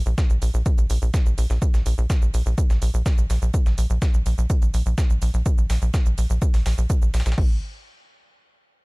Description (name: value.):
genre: melodic techno.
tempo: 125 BPM.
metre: 4/4.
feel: straight.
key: unclear.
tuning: A4 = 441 Hz.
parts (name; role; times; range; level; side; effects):
tight sequencer bass; bass; 0.0-7.6 s; Bb1; -20 LUFS; equal; sidechain pumping.
punchy analog drum machine; drums; 0.1-7.5 s; crash cymbal, hi-hat, shaker; -38 LUFS; right 6 dB; none.
dusty soul sampler-style drum kit; drums; 0.2-7.4 s; hi-hat, snare drum; -39 LUFS; equal; high-pass filter on snare, sidechain pumping on hats, high-pass filter on hats.
electronic kick drum; drums; 0.2-7.5 s; none; -20 LUFS; equal; none.
room: digital ambience.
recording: dark, warm production.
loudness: -18 LUFS.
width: side -30 dB against mid.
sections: 0.0-7.4 A section; 7.4-8.8 B section.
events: drop 0.0-7.4.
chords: none.